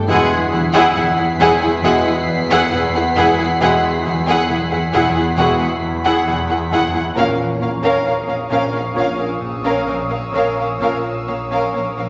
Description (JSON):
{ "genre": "cinematic", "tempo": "67 BPM", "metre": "4/4", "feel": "straight", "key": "unclear", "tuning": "A4 = 441 Hz", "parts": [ { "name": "warm chamber violin section", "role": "melody", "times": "0.0-12.1 s", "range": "F5 to F#5", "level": "-23 LUFS", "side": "equal", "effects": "none" }, { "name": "warm symphonic violin section", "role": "second line", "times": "0.0-12.1 s", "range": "G#4 to Bb4", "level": "-24 LUFS", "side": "equal", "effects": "none" }, { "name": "warm studio viola section", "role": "accompaniment", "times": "0.0-12.1 s", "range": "Db4 to E4", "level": "-24 LUFS", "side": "equal", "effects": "none" }, { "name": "clear trombone section", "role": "sustained chords", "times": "0.0-11.2 s", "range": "E3 to Bb3", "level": "-28 LUFS", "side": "equal", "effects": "none" }, { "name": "concert harp", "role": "riff", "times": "0.0-12.1 s", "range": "E2 to Bb3", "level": "-26 LUFS", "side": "equal", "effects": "none" }, { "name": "rich studio double bass section", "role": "bass", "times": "0.0-11.8 s", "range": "E1 to Bb1", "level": "-34 LUFS", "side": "equal", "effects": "none" }, { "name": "warm symphonic cello section", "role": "bass", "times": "0.0-12.1 s", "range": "E2 to Bb2", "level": "-33 LUFS", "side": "equal", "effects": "none" }, { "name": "swarming drone", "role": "drone", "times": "0.0-12.1 s", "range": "Bb1 to E2", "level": "-29 LUFS", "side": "equal", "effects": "built-in reverb" }, { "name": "large celesta", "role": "texture", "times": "0.0-12.1 s", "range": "C#6 to D6", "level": "-34 LUFS", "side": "equal", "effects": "none" }, { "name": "mellow French horn section", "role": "sustained chords", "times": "0.1-11.2 s", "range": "B3 to F#4", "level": "-30 LUFS", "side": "equal", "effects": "none" }, { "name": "warm symphonic violin section", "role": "texture", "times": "0.1-12.1 s", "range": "Db6 to C7", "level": "-31 LUFS", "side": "equal", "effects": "none" } ], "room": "wet scoring stage reverb, RT60 1.9 s", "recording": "nothing above 7.8 kHz", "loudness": "-17 LUFS", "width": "mono", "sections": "0.0-12.1 A section", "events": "none", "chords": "0.1 Eadd9; 7.2 Bbm", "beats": "| 0.08 0.96 1.84 2.72 | 3.61 4.50 5.38 6.27 | 7.17 8.06 8.96 9.87 | 10.80 11.75" }